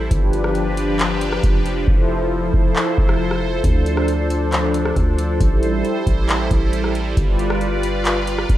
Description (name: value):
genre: hip hop, atmospheric cloud-rap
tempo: 136 BPM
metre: 4/4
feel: half-time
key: unclear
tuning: A4 = 440 Hz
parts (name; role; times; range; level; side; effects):
- sweeping resonant pad; sustained chords; 0.0-8.6 s; F3 to D5; -20 LUFS; equal; chorus, sidechain pumping
- long sustained 808-style bass; bass; 0.0-8.6 s; F1 to D2; -22 LUFS; equal; none
- booming analog drum machine; drums; 0.1-8.6 s; handclaps, hi-hat, kick drum, rim click; -19 LUFS; equal; none
room: little or no reverb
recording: rough home demo mix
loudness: -16 LUFS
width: side -13 dB against mid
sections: 0.0-8.6 A section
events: hi-hats muted 1.9-3.6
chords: 0.1 G7; 1.9 Fmaj7; 3.6 Dm7; 5.4 Am7; 7.2 G7